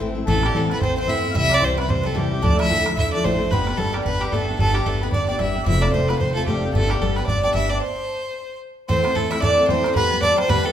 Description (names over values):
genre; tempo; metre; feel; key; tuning
celtic folk, Celtic reel; 223 BPM; 4/4; swing 58% on 8ths; A minor; A4 = 437 Hz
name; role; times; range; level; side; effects
picked steel-string acoustic guitar; accompaniment; 0.0-10.7 s; D2 to G4; -25 LUFS; left 3 dB; none
upright bass; bass; 0.0-7.8 s; F1 to G2; -24 LUFS; equal; none
clear fiddle; melody; 0.3-10.7 s; G4 to E5; -23 LUFS; right 2 dB; none
Irish bouzouki; second line; 0.3-10.7 s; G3 to E4; -27 LUFS; right 1 dB; none
mellow accordion; second line; 0.3-10.7 s; G4 to F5; -29 LUFS; left 1 dB; none
bodhran; percussion; 0.3-10.6 s; none; -26 LUFS; right 2 dB; none
room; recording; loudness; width
wet recital hall reverb, RT60 1.2 s; minimal, uncompressed stereo recording; -18 LUFS; side -10 dB against mid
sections
0.3-8.9 A section; 8.9-10.7 B section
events
stop 7.8-8.9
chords
0.3 Amadd9; 1.4 C; 2.4 Dmadd9; 3.5 G; 5.7 F; 6.7 G; 7.8 N.C.; 8.9 Am; 10.0 Em